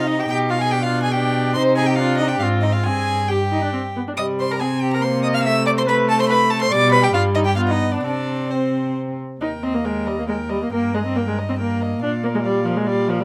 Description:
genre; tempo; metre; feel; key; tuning
quick classical-period movement for string quartet; 128-145 BPM; 3/4; rubato; C minor, Eb major from 9.4 s; A4 = 442 Hz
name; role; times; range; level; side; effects
rich violin; melody; 0.0-13.2 s; C5 to F6; -27 LUFS; equal; none
dark violin; second line; 0.0-13.2 s; C4 to F5; -25 LUFS; equal; none
rich viola; accompaniment; 0.0-13.2 s; F3 to G4; -25 LUFS; equal; none
rich cello; bass; 0.0-13.2 s; Eb2 to C3; -25 LUFS; equal; none
room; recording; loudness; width
little or no reverb; close, detailed microphones; -20 LUFS; mono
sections
0.0-9.4 A section; 9.4-13.2 B section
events
none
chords
0.3 G/B; 1.6 Cm; 2.4 Ab; 2.9 Cm/G; 3.7 N.C.; 4.2 C5; 5.5 Cmaj13; 6.7 G/B; 7.1 Ebadd9/G; 7.6 G; 8.0 Csus2; 9.4 Eb; 10.7 Eb/G; 12.0 Bb

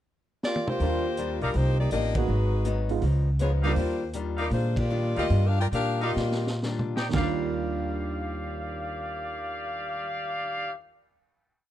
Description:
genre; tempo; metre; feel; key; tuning
jazz, big band swing; 114-163 BPM; 4/4; swing 66% on 8ths; Eb major; A4 = 439 Hz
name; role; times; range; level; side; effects
bright saxophone section; melody; 0.4-6.6 s; G3 to G5; -29 LUFS; left 2 dB; slapback echo
vintage drum kit; drums; 0.4-7.3 s; hi-hat, kick drum, ride cymbal, snare drum, toms; -33 LUFS; equal; none
picked old ladder-braced acoustic guitar; accompaniment; 0.8-10.8 s; Ab2 to F4; -36 LUFS; left 7 dB; none
warm grand piano; accompaniment; 0.8-3.8, 7.1-10.8 s; Eb2 to G4; -33 LUFS; right 11 dB; none
upright bass; bass; 0.8-10.7 s; Ab1 to Bb2; -27 LUFS; equal; none
clear trumpet section; stabs; 1.4-10.7 s; Eb4 to G5; -32 LUFS; left 1 dB; none
room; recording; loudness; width
small room ambience; dry, close 1970s-style studio recording; -25 LUFS; side -12 dB against mid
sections
0.0-0.8 pickup bar; 0.8-7.1 A section; 7.1-11.4 final chord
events
drum fill 0.4-0.8, 6.2-7.1; band accent 2.1, 4.7; slowing down 3.8-7.1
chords
0.0 Bb6; 0.8 Ebmaj9; 1.5 Cm11; 2.3 Abm7; 3.0 Db9; 3.8 Ebmaj9

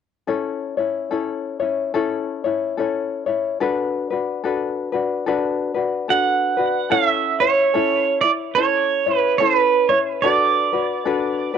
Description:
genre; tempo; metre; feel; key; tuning
Hawaiian; 72 BPM; 4/4; swing 59% on 8ths; A major; A4 = 438 Hz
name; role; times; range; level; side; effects
tenor ukulele; accompaniment; 0.3-11.6 s; C#4 to C#5; -21 LUFS; left 6 dB; cassette tape, plate reverb
pedal steel guitar; melody; 6.1-11.6 s; B4 to F#5; -17 LUFS; right 7 dB; plate reverb, analog delay
room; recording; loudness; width
moderate booth ambience, RT60 0.3 s; home recording on cassette; -18 LUFS; side -7 dB against mid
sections
0.3-6.9 A section; 6.9-11.6 B section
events
none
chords
0.3 A; 3.6 D6; 6.9 A; 10.2 D6

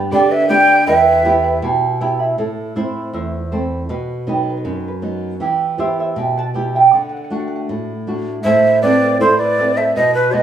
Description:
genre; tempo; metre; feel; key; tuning
andean folk, Andean ensemble; 79 BPM; 2/4; straight; unclear; A4 = 440 Hz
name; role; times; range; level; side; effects
charango; accompaniment; 0.0-10.4 s; E4 to B5; -18 LUFS; right 5 dB; none
flamenco guitar; accompaniment; 0.0-10.4 s; E2 to G4; -20 LUFS; right 1 dB; none
breathy large quena; melody; 0.1-1.6, 8.4-10.4 s; B4 to G5; -13 LUFS; right 1 dB; none
mellow hollow polished pan flute; second line; 0.1-1.6, 8.4-10.4 s; F#4 to D5; -20 LUFS; left 1 dB; none
room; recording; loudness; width
wet large studio reverb, RT60 0.9 s; band playing live in one room; -14 LUFS; side -9 dB against mid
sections
0.0-2.4 A section; 2.4-8.4 B section; 8.4-10.4 C section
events
charango solo 2.4-8.4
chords
0.0 G; 0.9 Em; 2.4 Am; 3.9 B; 5.4 Em; 6.9 D; 8.4 Am

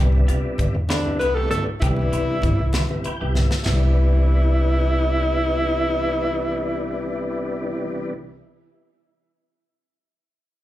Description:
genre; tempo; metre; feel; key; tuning
electric jazz fusion; 65 BPM (dotted quarters); 6/8; straight; C major; A4 = 440 Hz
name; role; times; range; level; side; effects
tonewheel organ; accompaniment; 0.0-8.1 s; C3 to G5; -28 LUFS; left 2 dB; chorus vibrato, fast rotary speaker, plate reverb, slapback echo
semi-hollow electric guitar; stabs; 0.0-3.8 s; C4 to G4; -33 LUFS; equal; lush chorus, plate reverb, slapback echo
upright bass; bass; 0.0-8.4 s; C2 to C3; -20 LUFS; equal; none
congas; percussion; 0.1-4.0 s; none; -29 LUFS; right 1 dB; none
crisp fusion drum kit; drums; 0.3-3.8 s; crash cymbal, hi-hat, kick drum, snare drum, toms; -26 LUFS; equal; none
warm alto saxophone; melody; 0.9-8.1 s; D4 to B4; -24 LUFS; equal; plate reverb, slapback echo, tape echo
clear tenor saxophone; second line; 0.9-8.1 s; D3 to B3; -34 LUFS; right 1 dB; plate reverb, slapback echo, tape echo
room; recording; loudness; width
light reverb; live gig heard through the venue's PA, club reverb; -19 LUFS; side -14 dB against mid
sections
0.0-3.7 A section; 3.7-7.4 B section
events
tonewheel organ fill 2.7-3.7; drum fill 3.4-3.7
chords
0.0 Cmaj9

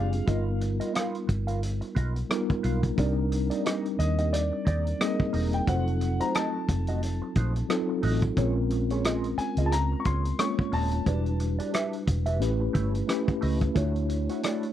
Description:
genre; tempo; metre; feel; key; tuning
lush 1970s-style soul; 89 BPM; 4/4; swing 58% on 16ths; unclear; A4 = 440 Hz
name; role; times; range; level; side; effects
clear concert grand piano; melody; 0.0-11.4 s; D5 to Db6; -33 LUFS; left 2 dB; none
mellow tine electric piano; accompaniment; 0.0-14.7 s; Gb3 to Db5; -30 LUFS; left 1 dB; medium stereo tremolo
mellow electric guitar; riff; 0.0-14.7 s; Ab3 to F5; -34 LUFS; right 4 dB; wah
vintage muted fingered electric bass; bass; 0.0-14.3 s; Eb1 to Eb2; -27 LUFS; equal; none
warm soul drum kit; drums; 0.1-14.7 s; hi-hat, kick drum, rim click; -30 LUFS; equal; none
room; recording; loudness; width
light reverb; dry, close 1970s-style studio recording; -24 LUFS; side -11 dB against mid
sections
0.0-14.7 A section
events
none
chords
0.3 G7alt; 3.0 Cm9; 5.7 F7b9; 8.4 Bbm7; 11.1 Em7; 12.4 A7; 13.8 Dmaj9

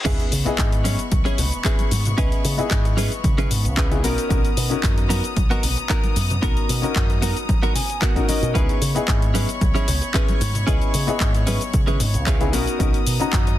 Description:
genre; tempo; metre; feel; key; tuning
nu-disco, nu disco; 113 BPM; 4/4; straight; C# dorian; A4 = 438 Hz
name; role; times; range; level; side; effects
direct-recorded clean electric guitar; riff; 0.0-13.5 s; B3 to G#5; -28 LUFS; right 2 dB; wide subtle chorus, ping-pong delay
reverse cymbal and sub drop; sound effects; 0.0-2.2 s; none; -33 LUFS; left 1 dB; none
dark baby grand piano; accompaniment; 0.1-13.6 s; B3 to A#5; -27 LUFS; left 4 dB; sidechain pumping, ping-pong delay
bright chamber string section; sustained chords; 0.1-13.6 s; B3 to D#6; -31 LUFS; left 2 dB; sidechain pumping
fingered electric bass with an envelope filter; bass; 0.1-13.6 s; B1 to C#3; -23 LUFS; equal; none
electronic kick drum; drums; 0.1-13.4 s; none; -21 LUFS; equal; none
house drum kit; drums; 0.1-13.6 s; crash cymbal, handclaps, hi-hat, shaker; -27 LUFS; left 2 dB; none
congas; percussion; 0.5-13.3 s; none; -31 LUFS; left 3 dB; none
room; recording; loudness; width
little or no reverb; dense, heavily limited modern master; -18 LUFS; side -13 dB against mid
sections
0.1-13.6 A section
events
drop 0.1-13.6; impact 0.1-2.2; clean electric guitar fill 7.5-8.6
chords
0.1 C#m7; 4.0 Bmaj7; 8.6 C#m7; 12.5 Bmaj7

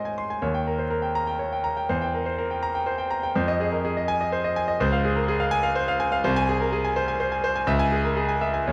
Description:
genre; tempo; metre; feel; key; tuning
classical, virtuoso piano study; 124 BPM; 3/4; rubato; unclear; A4 = 440 Hz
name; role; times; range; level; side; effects
clear concert grand piano; solo; 0.0-8.7 s; C2 to C6; -25 LUFS; equal; none
room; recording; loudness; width
moderate recital hall reverb, RT60 1.6 s; close, detailed microphones, vinyl crackle; -25 LUFS; mono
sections
0.0-8.7 A section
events
none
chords
0.4 Eb7; 1.9 C7/E; 3.3 Fm7; 4.8 Dbmaj7; 6.2 Ab/C; 7.7 Dbm

